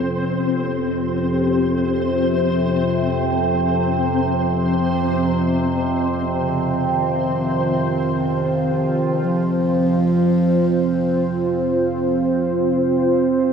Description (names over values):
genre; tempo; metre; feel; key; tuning
dark ambient drone; free time; none; none; unclear; A4 = 440 Hz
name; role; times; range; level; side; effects
dark bass clarinet; melody; 0.0-12.7 s; C3 to F3; -22 LUFS; equal; diffuse ambient delay
overtone-sweeping drone; drone; 0.0-13.5 s; F2 to C3; -21 LUFS; equal; chorus, built-in reverb
flickering grainy texture; texture; 0.0-13.5 s; C4 to C5; -26 LUFS; left 3 dB; built-in reverb
sweeping resonant pad; sustained chords; 4.6-13.5 s; C4 to C5; -20 LUFS; right 2 dB; chorus
room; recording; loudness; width
wet plate reverb, RT60 2.9 s; dreamy mix soaked in reverb; -17 LUFS; side -6 dB against mid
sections
0.0-13.5 A section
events
fade-in on bass clarinet 0.0-13.5; fade-out on synth texture 0.0-13.5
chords
0.0 F5